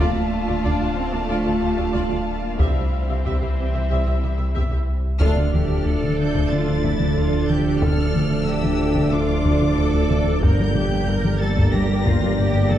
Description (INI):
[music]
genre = cinematic, hybrid orchestral and electronic film score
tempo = 92 BPM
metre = 4/4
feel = straight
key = D minor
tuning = A4 = 440 Hz
[part]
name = warm symphonic violin section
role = melody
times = 0.0-12.8 s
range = E4 to Bb6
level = -33 LUFS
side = left 4 dB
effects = none
[part]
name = dark symphonic violin section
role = second line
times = 0.0-12.8 s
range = A4 to A5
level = -30 LUFS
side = left 2 dB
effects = none
[part]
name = warm symphonic viola section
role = accompaniment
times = 0.0-12.8 s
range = Bb3 to E5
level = -32 LUFS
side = equal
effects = none
[part]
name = evolving wavetable pad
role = sustained chords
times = 0.0-12.8 s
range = E3 to D5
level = -28 LUFS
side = right 1 dB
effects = chorus, built-in reverb
[part]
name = mellow French horn section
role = sustained chords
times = 0.0-12.8 s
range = D4 to D5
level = -30 LUFS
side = left 1 dB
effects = none
[part]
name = warm trombone section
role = sustained chords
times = 0.0-12.8 s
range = D3 to Bb3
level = -33 LUFS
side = right 3 dB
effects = none
[part]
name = punchy sub bass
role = bass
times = 0.0-12.8 s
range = D1 to C2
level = -26 LUFS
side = equal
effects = none
[part]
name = rich studio double bass section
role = bass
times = 0.0-12.8 s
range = G1 to D2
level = -28 LUFS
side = right 2 dB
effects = none
[part]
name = rich symphonic cello section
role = bass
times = 0.0-12.8 s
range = G3 to Bb4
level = -30 LUFS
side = right 2 dB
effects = none
[part]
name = taiko ensemble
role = drums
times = 0.6-12.8 s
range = none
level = -24 LUFS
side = equal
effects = none
[part]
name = smooth gliding synth bass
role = riff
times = 5.2-12.8 s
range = D2 to G3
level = -23 LUFS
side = left 2 dB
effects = none
[part]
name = mellow tuba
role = bass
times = 5.2-12.8 s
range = G1 to D2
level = -26 LUFS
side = right 4 dB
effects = none
[sound]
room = moderate scoring stage reverb, RT60 2.0 s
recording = dark, warm production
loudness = -18 LUFS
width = side -11 dB against mid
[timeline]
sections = 0.0-5.2 A section; 5.2-12.8 B section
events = band accent 5.2-5.9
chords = 0.0 Dm; 2.6 C; 5.2 Dm; 10.4 Gm